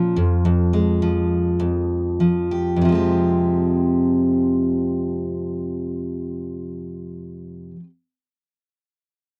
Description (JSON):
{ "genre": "pop", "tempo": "95-108 BPM", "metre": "4/4", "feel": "straight", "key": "F minor", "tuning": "A4 = 440 Hz", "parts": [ { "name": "picked steel-string acoustic guitar", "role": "accompaniment", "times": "0.0-7.9 s", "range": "F2 to G4", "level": "-21 LUFS", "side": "equal", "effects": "none" } ], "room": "little or no reverb", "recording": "dry, close 1970s-style studio recording", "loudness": "-20 LUFS", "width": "mono", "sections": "0.0-2.8 A section; 2.8-7.9 B section", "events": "slowing down 0.0-2.8", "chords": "0.2 Fm; 2.8 Fmadd9" }